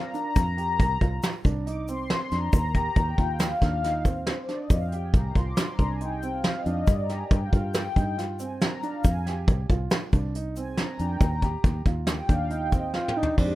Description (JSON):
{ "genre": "progressive instrumental, band music in an uneven meter", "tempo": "138 BPM", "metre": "5/4", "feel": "straight", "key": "F dorian", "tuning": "A4 = 440 Hz", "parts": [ { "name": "sweeping resonant pad", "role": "accompaniment", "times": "0.0-13.5 s", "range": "F5 to C6", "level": "-31 LUFS", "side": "left 2 dB", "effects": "chorus" }, { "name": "warm grand piano", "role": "arpeggios", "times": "0.0-13.6 s", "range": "C4 to G4", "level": "-35 LUFS", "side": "right 5 dB", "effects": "none" }, { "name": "soft brush drum kit", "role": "drums", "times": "0.1-13.5 s", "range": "crash cymbal, hi-hat, kick drum, snare drum, toms", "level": "-24 LUFS", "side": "equal", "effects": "none" }, { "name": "tube shaker", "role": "percussion", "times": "0.1-12.9 s", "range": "none", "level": "-48 LUFS", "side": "left 4 dB", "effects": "none" }, { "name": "fingered electric bass", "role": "bass", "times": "0.4-13.6 s", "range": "C2 to G2", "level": "-29 LUFS", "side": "equal", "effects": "none" }, { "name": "breathy tenor saxophone", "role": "melody", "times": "12.9-13.6 s", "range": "D4 to F4", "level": "-27 LUFS", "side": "equal", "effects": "none" } ], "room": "little or no reverb", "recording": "rough home demo mix", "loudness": "-23 LUFS", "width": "side -16 dB against mid", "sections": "0.0-13.4 A section", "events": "analog synth pad solo 0.0-13.4; drum fill 12.9-13.4", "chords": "0.4 Fsus2; 2.5 Cm11/Eb; 4.7 Fsus2; 6.9 G5; 9.0 Fsus2; 11.2 Cmadd9/Eb" }